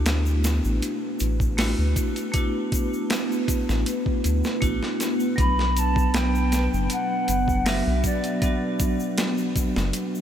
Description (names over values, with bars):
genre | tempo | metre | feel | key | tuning
trip hop | 79 BPM | 4/4 | straight | unclear | A4 = 443 Hz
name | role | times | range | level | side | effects
vibraphone with hard mallets | accompaniment | 0.0-10.2 s | F#3 to F#4 | -27 LUFS | equal | harmonic tremolo, vintage 12-bit sampler grit, tape echo
deep dark ambient pad | sustained chords | 0.3-10.2 s | B3 to B4 | -30 LUFS | right 1 dB | chorus, built-in reverb, vintage 12-bit sampler grit
round analog bass | bass | 0.0-9.9 s | F#1 to D2 | -24 LUFS | equal | none
boom bap sampler-style drum kit | drums | 0.1-10.1 s | hi-hat, kick drum, snare drum | -27 LUFS | equal | overdrive
tube shaker | percussion | 0.1-10.2 s | none | -38 LUFS | left 2 dB | none
breathy mellow jazz flute | melody | 5.4-8.8 s | D5 to B5 | -28 LUFS | equal | tape echo
room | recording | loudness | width
moderate huge ambient reverb, RT60 6.7 s | dreamy mix soaked in reverb | -21 LUFS | side -10 dB against mid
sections
0.0-10.2 A section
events
break 9.9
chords
0.0 Dadd9; 5.4 Bm